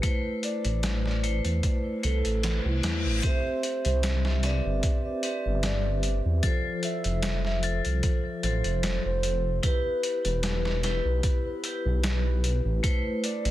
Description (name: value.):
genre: trip hop.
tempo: 75 BPM.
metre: 4/4.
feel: swing 53% on 16ths.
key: A minor.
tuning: A4 = 440 Hz.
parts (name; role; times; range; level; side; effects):
vibraphone with hard mallets; accompaniment; 0.0-13.5 s; F3 to E5; -32 LUFS; left 1 dB; harmonic tremolo.
trip hop sampler-style drum kit; drums; 0.0-13.5 s; hi-hat, kick drum, snare drum; -29 LUFS; equal; none.
pure breathy sine lead; melody; 0.4-13.5 s; E4 to E5; -34 LUFS; equal; wide subtle chorus, tape echo.
dark detuned saw bass; bass; 0.6-13.5 s; E1 to E2; -26 LUFS; equal; tube saturation.
reverse cymbal; sound effects; 2.3-3.2 s; none; -37 LUFS; left 3 dB; none.
room: little or no reverb.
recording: dense, heavily limited modern master.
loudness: -24 LUFS.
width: side -14 dB against mid.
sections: 0.0-3.2 A section; 3.2-13.5 B section.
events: reverse cymbal 2.3-3.2.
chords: 0.0 Amadd9; 3.2 Cmaj7; 6.4 F; 9.6 Em; 12.8 Amadd9.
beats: | 0.03 0.83 1.63 2.43 | 3.23 4.03 4.83 5.63 | 6.43 7.23 8.03 8.83 | 9.63 10.43 11.23 12.03 | 12.83.